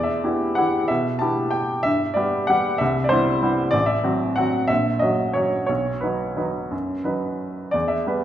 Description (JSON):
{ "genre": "classical, piano waltz", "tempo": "171-199 BPM", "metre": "3/4", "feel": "rubato", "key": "E minor", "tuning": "A4 = 441 Hz", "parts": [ { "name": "bright baby grand piano", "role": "solo", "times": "0.0-8.2 s", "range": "A1 to A5", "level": "-19 LUFS", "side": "equal", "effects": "none" } ], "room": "wet recital hall reverb, RT60 1.6 s", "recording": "recorded in a church or concert hall", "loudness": "-19 LUFS", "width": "side -11 dB against mid", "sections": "0.0-8.2 A section", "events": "none", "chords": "0.0 Em; 1.9 G; 2.8 Cmaj7; 3.7 F#dim/A; 4.7 F#7/A#; 5.7 B; 7.7 Em", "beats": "0.24 0.57 | 0.89 1.21 1.53 | 1.85 2.17 2.49 | 2.81 3.11 3.43 | 3.74 4.05 4.38 | 4.70 5.02 5.36 | 5.69 6.03 6.38 | 6.72 7.06 7.41 | 7.74 8.07" }